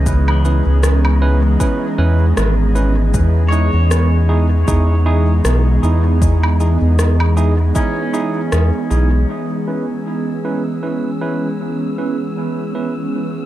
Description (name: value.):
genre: ambient dub.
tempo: 78 BPM.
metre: 4/4.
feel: swing 56% on 16ths.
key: unclear.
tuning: A4 = 438 Hz.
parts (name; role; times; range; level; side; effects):
airy breathy pad; sustained chords; 0.0-13.5 s; E3 to G#4; -20 LUFS; equal; chorus.
pedal steel guitar; arpeggios; 0.0-9.1 s; B3 to C#5; -29 LUFS; left 1 dB; dub echo.
round analog bass; bass; 0.0-9.3 s; G#1 to E2; -13 LUFS; equal; tube saturation.
wind-like tuned noise texture; texture; 0.0-13.5 s; E3 to E6; -31 LUFS; right 2 dB; built-in reverb.
electronic cabasa, woodblock and rim click; drums; 0.1-9.1 s; none; -24 LUFS; equal; overdrive, low-pass filter on snare, low-pass filter on perc, low-pass filter on room, dub echo.
electronic kick drum; drums; 0.1-7.9 s; none; -18 LUFS; equal; overdrive.
barky tine electric piano; stabs; 0.4-12.9 s; C#4 to B4; -24 LUFS; right 3 dB; low-pass filter, dub echo.
room: little or no reverb.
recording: dark, warm production.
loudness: -13 LUFS.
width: side -14 dB against mid.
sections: 0.0-9.3 A section; 9.3-13.5 B section.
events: none.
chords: 0.0 C#m7; 3.1 Emaj7.